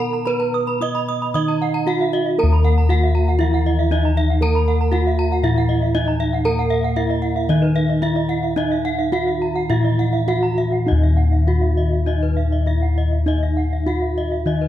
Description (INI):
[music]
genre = gamelan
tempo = 100-118 BPM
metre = 4/4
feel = straight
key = Eb pelog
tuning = A4 = 439 Hz
[part]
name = gamelan-type bronze metallophone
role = melody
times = 0.0-14.7 s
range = Eb4 to Eb5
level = -23 LUFS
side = right 2 dB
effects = none
[part]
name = gamelan-type bronze metallophone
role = accompaniment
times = 0.0-10.9 s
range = Eb3 to Eb4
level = -27 LUFS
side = right 4 dB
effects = none
[part]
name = gamelan-type bronze metallophone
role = arpeggios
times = 0.0-14.7 s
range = Cb5-20c to Eb6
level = -27 LUFS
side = left 4 dB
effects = none
[part]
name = gamelan-type bossed gongs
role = bass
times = 0.0-14.7 s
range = Eb2 to Cb5-20c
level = -18 LUFS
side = left 1 dB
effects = none
[part]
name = gamelan-type bronze metallophone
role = arpeggios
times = 0.1-14.5 s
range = Cb5-20c to Eb6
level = -28 LUFS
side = right 6 dB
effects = none
[sound]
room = light reverb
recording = dark, warm production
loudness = -16 LUFS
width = side -12 dB against mid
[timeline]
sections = 0.0-2.4 A section; 2.4-10.9 B section; 10.9-14.7 A section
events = none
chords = none